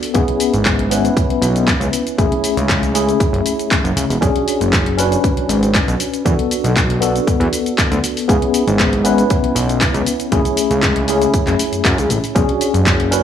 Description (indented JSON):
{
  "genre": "nu-disco, nu disco",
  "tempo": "118 BPM",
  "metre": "4/4",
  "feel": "straight",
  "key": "B dorian",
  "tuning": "A4 = 440 Hz",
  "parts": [
    { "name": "tine electric piano", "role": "accompaniment", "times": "0.0-13.2 s", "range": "A3 to B4", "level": "-18 LUFS", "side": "left 2 dB", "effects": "medium stereo tremolo, dub echo" },
    { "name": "house drum kit", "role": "drums", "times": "0.0-13.2 s", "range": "handclaps, hi-hat, shaker", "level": "-21 LUFS", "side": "left 1 dB", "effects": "none" },
    { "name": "fat analog bass", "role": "bass", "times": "0.1-13.2 s", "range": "E1 to F#2", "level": "-18 LUFS", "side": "equal", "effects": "none" },
    { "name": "electronic kick drum", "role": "drums", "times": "0.1-13.0 s", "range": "none", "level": "-18 LUFS", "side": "equal", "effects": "none" }
  ],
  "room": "light reverb, digital ambience",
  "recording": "small room reverb",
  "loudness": "-13 LUFS",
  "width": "side -9 dB against mid",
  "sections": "0.0-13.2 A section",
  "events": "none",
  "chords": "0.2 C#m7; 2.2 F#m9; 4.2 Bm69; 6.3 E9sus4; 8.3 C#m7; 10.3 F#m9; 12.4 Bm69"
}